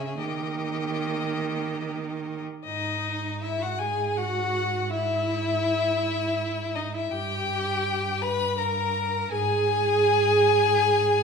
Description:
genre	classical, slow romantic movement for string quartet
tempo	70-84 BPM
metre	3/4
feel	rubato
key	G# minor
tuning	A4 = 438 Hz
part	rich violin	melody	0.0-11.2 s	D#5 to B5	-27 LUFS	left 7 dB	none
part	rich violin	second line	0.0-11.2 s	D#4 to B4	-31 LUFS	left 2 dB	none
part	rich viola	accompaniment	0.0-11.2 s	A#3 to B4	-28 LUFS	right 4 dB	none
part	rich cello	bass	0.0-11.2 s	G2 to D#3	-31 LUFS	right 5 dB	none
room	wet recital hall reverb, RT60 1.5 s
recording	recorded in a church or concert hall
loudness	-23 LUFS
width	side -5 dB against mid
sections	0.0-2.7 A section; 2.7-11.2 B section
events	none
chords	0.2 D#; 2.7 G#5; 7.1 Gm; 9.3 N.C.

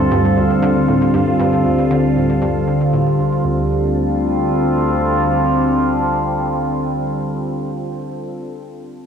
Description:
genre	ambient, sequencer-driven space music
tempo	117 BPM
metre	4/4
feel	straight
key	D minor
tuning	A4 = 440 Hz
part	evolving wavetable pad	sustained chords	0.0-8.3 s	D3 to A4	-16 LUFS	equal	phaser, built-in reverb, cassette tape
part	analog pluck	riff	0.0-3.7 s	D2 to D3	-22 LUFS	equal	chorus, cassette tape, ping-pong delay
part	analog drone	bass	0.0-4.9 s	D2	-25 LUFS	equal	chorus
room	wet small room reverb, RT60 0.5 s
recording	home recording on cassette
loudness	-14 LUFS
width	side -7 dB against mid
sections	0.0-3.4 A section; 3.4-7.5 B section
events	fade-out on synth arpeggio sound 0.0-3.4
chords	0.0 Dm

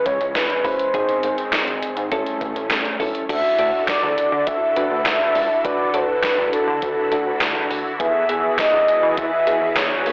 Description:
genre	synth-pop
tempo	102 BPM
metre	4/4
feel	straight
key	unclear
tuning	A4 = 440 Hz
part	mellow horn-like synth lead	melody	0.0-10.1 s	A4 to E5	-23 LUFS	equal	chorus, shimmer reverb
part	string machine, violas	sustained chords	0.0-10.1 s	D3 to B4	-30 LUFS	equal	phaser, ensemble chorus, shimmer reverb
part	chorused synth bass	bass	0.1-10.1 s	F#1 to E3	-30 LUFS	equal	transformer saturation
part	gated 80s digital drum machine	drums	0.1-10.1 s	crash cymbal, handclaps, hi-hat, kick drum, snare drum	-26 LUFS	equal	gated reverb, gated reverb snare
part	soft electric-piano-like synth keys	accompaniment	0.6-10.1 s	B3 to B4	-28 LUFS	equal	chorus, shimmer reverb
room	wet studio reverb, RT60 0.6 s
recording	blown-out, overdriven recording, overdrive, telephone sound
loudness	-20 LUFS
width	mono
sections	0.0-3.3 A section; 3.3-10.1 B section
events	none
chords	0.0 C#m; 0.9 G#; 2.1 A7; 3.3 Dadd9; 8.0 Eadd9

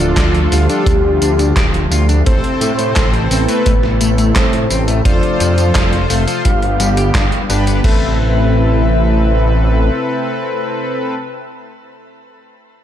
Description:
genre	synthwave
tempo	86 BPM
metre	4/4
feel	straight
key	A minor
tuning	A4 = 442 Hz
part	soft octave-layered synth lead	melody	0.0-11.2 s	F4 to F5	-21 LUFS	left 1 dB	chorus, phaser, tape echo, shimmer reverb
part	warm analog pad	sustained chords	0.0-11.2 s	C3 to B4	-22 LUFS	left 1 dB	chorus, sidechain pumping, shimmer reverb
part	electric guitar at the edge of break-up	riff	0.0-8.2 s	F3 to D5	-23 LUFS	left 5 dB	lush chorus, tape echo, shimmer reverb
part	analog synth brass	stabs	0.0-11.2 s	C4 to C5	-21 LUFS	left 1 dB	chorus, shimmer reverb
part	wide detuned saw bass	bass	0.0-9.9 s	D1 to A2	-15 LUFS	equal	chorus, tube saturation, sidechain pumping
part	gated 80s digital drum machine	drums	0.0-8.0 s	crash cymbal, handclaps, hi-hat, snare drum, tambourine	-21 LUFS	equal	gated reverb, gated reverb snare, overdrive
part	kick drum	drums	0.2-8.0 s	none	-16 LUFS	equal	none
room	light reverb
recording	dark, warm production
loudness	-11 LUFS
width	side -10 dB against mid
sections	0.0-7.8 A section; 7.8-10.6 B section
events	none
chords	0.0 Dm; 2.3 Amadd9; 5.1 F; 6.5 G; 7.8 Amadd9

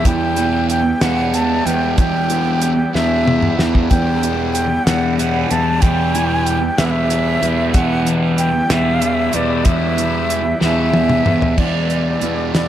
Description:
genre	psychedelic rock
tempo	62 BPM (dotted quarters)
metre	6/8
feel	straight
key	E minor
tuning	A4 = 440 Hz
part	breathy bright concert flute	melody	0.0-12.7 s	D5 to A5	-20 LUFS	equal	analog delay
part	combo organ	sustained chords	0.0-12.7 s	G3 to B4	-29 LUFS	right 4 dB	none
part	fuzz guitar	riff	0.0-12.7 s	E2 to E3	-20 LUFS	right 1 dB	distortion, phaser
part	fuzz picked electric bass	bass	0.0-12.7 s	E2	-19 LUFS	equal	overdrive
part	damped 70s drum kit	drums	0.1-12.7 s	crash cymbal, hi-hat, kick drum, snare drum, toms	-18 LUFS	equal	none
room	light reverb, studio reverb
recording	lossy compression artefacts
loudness	-14 LUFS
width	side -11 dB against mid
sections	0.0-11.6 A section; 11.6-12.7 B section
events	drum fill 2.9-3.9, 10.6-11.6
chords	0.0 Em; 11.6 Em7

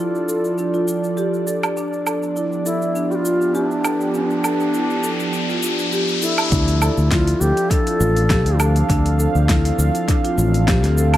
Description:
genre	organic downtempo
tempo	101 BPM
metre	4/4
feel	swing 54% on 16ths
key	D dorian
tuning	A4 = 440 Hz
part	bass bansuri	melody	0.0-9.5 s	D4 to A4	-23 LUFS	left 1 dB	tape echo
part	warm analog pad	sustained chords	0.0-11.2 s	F3 to F5	-23 LUFS	right 2 dB	chorus, sidechain pumping
part	marimba with soft mallets	arpeggios	0.0-11.2 s	D4 to A4	-25 LUFS	equal	tape echo
part	deep house drum kit	drums	0.2-11.2 s	cabasa, hi-hat, snare drum, woodblock	-24 LUFS	right 1 dB	studio reverb, analog delay
part	riser	sound effects	3.7-6.5 s	none	-26 LUFS	left 3 dB	none
part	fretless electric bass	bass	6.5-11.2 s	A1 to D2	-17 LUFS	equal	sidechain pumping
part	electronic kick drum	drums	6.5-10.8 s	none	-20 LUFS	equal	studio reverb
room	moderate spring reverb, RT60 2.4 s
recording	echo-heavy mix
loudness	-16 LUFS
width	side -13 dB against mid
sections	0.0-6.5 A section; 6.5-11.2 B section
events	riser 3.7-6.5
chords	0.0 F6; 1.8 G7; 6.5 Dm9

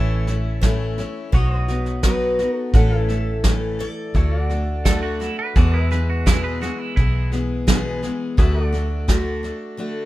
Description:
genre	honky-tonk and classic country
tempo	85 BPM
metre	4/4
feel	straight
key	A major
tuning	A4 = 440 Hz
part	picked steel-string acoustic guitar	accompaniment	0.0-10.1 s	E2 to A4	-26 LUFS	left 2 dB	none
part	pedal steel guitar	sustained chords	0.0-10.1 s	E4 to E5	-32 LUFS	right 1 dB	none
part	vintage muted fingered electric bass	bass	0.0-9.5 s	A1 to E2	-22 LUFS	equal	none
part	soft brush drum kit	drums	0.3-9.5 s	hi-hat, kick drum, snare drum	-18 LUFS	equal	none
part	picked steel-string acoustic guitar	melody	0.6-5.2 s	A4 to D5	-28 LUFS	left 1 dB	none
part	twangy electric guitar	second line	4.9-7.3 s	E4 to B4	-28 LUFS	right 4 dB	none
room	little or no reverb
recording	minimal, uncompressed stereo recording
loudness	-18 LUFS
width	side -16 dB against mid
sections	0.0-10.1 A section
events	none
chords	0.0 A; 1.3 B; 2.7 A; 4.2 D; 5.6 E; 8.4 D

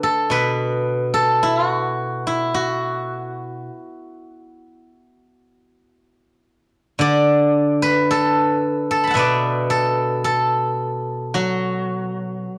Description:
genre	chinese traditional, Chinese solo plucked strings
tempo	54 BPM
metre	4/4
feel	rubato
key	D gong mode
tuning	A4 = 440 Hz
part	steel-string zither	solo	0.0-12.6 s	B2 to D6	-20 LUFS	equal	cassette tape
room	moderate small room reverb, RT60 0.5 s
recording	home recording on cassette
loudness	-20 LUFS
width	mono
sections	0.0-12.6 A section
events	none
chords	none

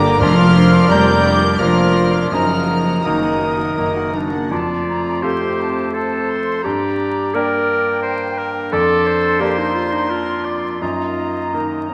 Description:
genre	cinematic, emotional film score for orchestra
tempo	85 BPM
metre	3/4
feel	uneven beats, rubato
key	Bb major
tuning	A4 = 440 Hz
part	warm symphonic violin section	melody	0.0-4.1 s	D6 to G6	-28 LUFS	equal	none
part	bright small flute group	second line	0.0-11.9 s	G5 to D6	-27 LUFS	equal	none
part	clear clarinet	second line	0.0-11.9 s	D4 to Bb4	-23 LUFS	equal	none
part	clear oboe	second line	0.0-11.9 s	Bb4 to Eb5	-28 LUFS	equal	none
part	warm symphonic violin section	second line	0.0-4.5 s	Gb4 to D6	-30 LUFS	equal	none
part	bright grand piano	accompaniment	0.0-11.9 s	F2 to Bb4	-25 LUFS	equal	none
part	dark symphonic viola section	accompaniment	0.0-4.5 s	F3 to G4	-28 LUFS	equal	none
part	mellow French horn section	sustained chords	0.0-11.9 s	D3 to Eb4	-25 LUFS	equal	none
part	clear chamber double bass section	bass	0.0-4.4 s	F1 to G1	-24 LUFS	equal	none
part	warm symphonic cello section	bass	0.0-4.1 s	D3 to G3	-24 LUFS	equal	none
part	timpani	percussion	0.2-1.2 s	F2	-27 LUFS	equal	none
room	wet scoring stage reverb, RT60 1.6 s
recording	vinyl crackle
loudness	-17 LUFS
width	mono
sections	0.0-4.5 A section; 4.5-11.9 B section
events	none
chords	0.2 Bb/F; 2.3 Ebm/Gb; 4.5 F; 6.6 Gm; 8.7 Bb/F; 10.8 Ebm/Gb

